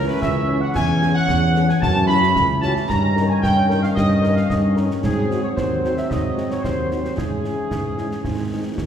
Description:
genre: military-style march for wind band.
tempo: 112 BPM.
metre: 2/4.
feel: straight.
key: C# minor.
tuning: A4 = 440 Hz.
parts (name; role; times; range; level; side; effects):
dark trumpet section; melody; 0.0-8.7 s; G#4 to B5; -25 LUFS; right 1 dB; none.
warm woodwind section; second line; 0.0-8.7 s; G#4 to B5; -26 LUFS; equal; none.
mellow French horn section; accompaniment; 0.0-8.6 s; G#3 to A#4; -30 LUFS; left 3 dB; none.
bright trombone section; sustained chords; 0.0-8.9 s; D#3 to C#4; -26 LUFS; right 1 dB; none.
dark tuba; bass; 0.0-8.9 s; C#2 to G#2; -20 LUFS; equal; none.
concert snare drum, concert bass drum and clash cymbals; drums; 0.2-8.9 s; none; -28 LUFS; equal; none.
room: wet scoring stage reverb, RT60 1.6 s.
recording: heard from further back in the room.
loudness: -17 LUFS.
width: side -8 dB against mid.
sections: 0.0-8.9 A section.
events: none.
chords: 0.0 C#m; 0.8 C#m/E; 1.8 F#5; 2.9 D#7/G; 5.0 G#7; 7.2 C#m/G#; 8.2 G#.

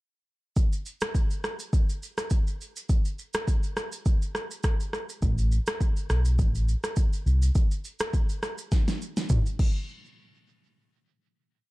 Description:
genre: afrobeats.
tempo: 103 BPM.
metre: 4/4.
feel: swing 55% on 16ths.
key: unclear.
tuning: A4 = 439 Hz.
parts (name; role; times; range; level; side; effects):
deep house drum kit; drums; 0.6-9.7 s; crash cymbal, kick drum, rim click, shaker, snare drum, toms; -25 LUFS; equal; none.
fingered electric bass; bass; 5.2-7.5 s; A1 to C2; -22 LUFS; equal; none.
room: little or no reverb.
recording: echo-heavy mix.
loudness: -24 LUFS.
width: side -21 dB against mid.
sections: 0.6-9.9 verse; 9.9-11.7 final hit.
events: drum fill 8.7-9.9.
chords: none.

